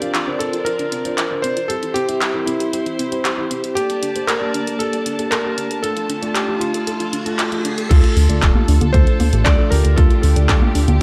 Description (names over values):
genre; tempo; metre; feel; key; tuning
italo disco; 116 BPM; 4/4; straight; D minor; A4 = 438 Hz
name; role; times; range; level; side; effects
warm electric grand piano; melody; 0.0-11.0 s; E4 to D5; -26 LUFS; equal; delay
dark studio string section; sustained chords; 0.0-11.0 s; Bb3 to A5; -30 LUFS; equal; none
soft round pluck; arpeggios; 0.0-11.0 s; C4 to A4; -32 LUFS; equal; chorus, digital delay
mellow tine electric piano; stabs; 0.0-11.0 s; A3 to A5; -28 LUFS; equal; none
house drum kit; drums; 0.0-11.0 s; congas, crash cymbal, handclaps, hi-hat; -26 LUFS; equal; overdrive
riser; sound effects; 5.3-7.9 s; none; -34 LUFS; equal; none
chorused synth bass; bass; 7.9-11.0 s; D1 to D2; -17 LUFS; equal; none
electronic kick drum; drums; 7.9-10.6 s; none; -16 LUFS; equal; overdrive
room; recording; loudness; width
light reverb, digital ambience; none; -18 LUFS; mono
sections
0.0-7.9 A section; 7.9-11.0 B section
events
filter sweep on tine electric piano 0.0-7.9; riser 5.3-7.9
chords
0.0 Bbadd9; 1.7 C; 3.8 Gmadd9; 5.8 Dm